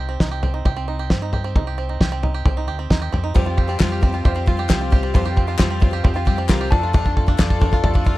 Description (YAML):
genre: indie folk with a building arrangement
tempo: 133 BPM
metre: 4/4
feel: straight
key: unclear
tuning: A4 = 440 Hz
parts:
  - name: bluegrass banjo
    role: arpeggios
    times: 0.0-8.2 s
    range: C4 to A4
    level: -27 LUFS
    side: right 6 dB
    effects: none
  - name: fingered electric bass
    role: bass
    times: 0.0-8.2 s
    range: C2 to G2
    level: -24 LUFS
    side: equal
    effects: none
  - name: cloth-damped thuddy drum kit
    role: drums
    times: 0.2-8.2 s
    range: kick drum, snare drum, toms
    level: -17 LUFS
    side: equal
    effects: none
  - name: bright upright piano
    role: accompaniment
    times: 3.3-8.2 s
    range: F1 to D5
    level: -31 LUFS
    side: right 5 dB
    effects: none
  - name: picked twelve-string acoustic guitar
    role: accompaniment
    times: 3.3-8.2 s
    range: F3 to A4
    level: -27 LUFS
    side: left 8 dB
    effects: none
  - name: hand-pumped harmonium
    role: sustained chords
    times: 3.3-8.2 s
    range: G3 to F4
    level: -33 LUFS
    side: left 1 dB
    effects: none
  - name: glockenspiel with rubber mallets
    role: second line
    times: 3.4-8.2 s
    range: G5 to A5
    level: -30 LUFS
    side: left 6 dB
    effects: none
  - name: group handclap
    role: percussion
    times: 3.8-7.5 s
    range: none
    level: -29 LUFS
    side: left 10 dB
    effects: none
room: little or no reverb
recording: dark, warm production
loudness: -17 LUFS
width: side -17 dB against mid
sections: 0.0-8.2 A section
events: build-up 0.0-8.2; drum fill 0.0-8.2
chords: 0.0 Cm; 3.4 Fsus2; 6.7 Dm/F